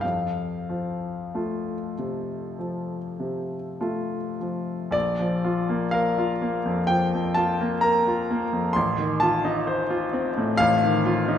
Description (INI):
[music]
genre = classical, romantic nocturne for solo piano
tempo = 45-68 BPM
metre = 4/4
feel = rubato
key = F major, Bb major from 4.9 s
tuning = A4 = 440 Hz
[part]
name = clear baby grand piano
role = solo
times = 0.0-11.4 s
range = A1 to C6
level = -22 LUFS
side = left 1 dB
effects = none
[sound]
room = moderate scoring stage reverb, RT60 1.8 s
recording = minimal, uncompressed stereo recording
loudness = -22 LUFS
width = side -9 dB against mid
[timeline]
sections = 0.0-4.9 A section; 4.9-11.4 B section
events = none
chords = 0.0 F; 4.9 Bb; 8.8 F7/A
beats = | 0.02 1.34 2.58 3.79 | 4.95 5.93 6.90 7.84 | 8.76 9.68 10.61